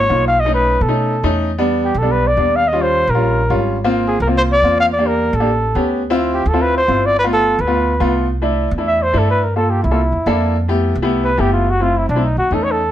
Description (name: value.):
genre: Afro-Cuban jazz.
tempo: 213 BPM.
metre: 4/4.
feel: straight.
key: C major.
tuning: A4 = 440 Hz.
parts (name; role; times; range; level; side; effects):
breathy trumpet; melody; 0.0-12.9 s; D4 to F5; -16 LUFS; equal; none.
upright bass; bass; 0.0-12.9 s; F#1 to B2; -19 LUFS; equal; none.
warm baby grand piano; accompaniment; 0.1-12.8 s; G3 to Db5; -18 LUFS; equal; none.
room: moderate studio reverb, RT60 0.7 s.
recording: none.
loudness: -13 LUFS.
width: side -11 dB against mid.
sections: 0.0-8.3 A section; 8.3-12.9 B section.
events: grand piano fill 3.4-3.8; trumpet solo 8.3-12.9.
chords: 0.4 B7; 1.5 Em7; 2.7 Eb7; 3.8 Ab6; 4.9 Em7b5; 5.5 A7; 6.0 Dm7; 7.2 G7; 8.3 C6; 9.4 Gm9; 10.0 C13; 10.5 Fmaj9#11; 11.7 F#m7b5; 12.2 B7.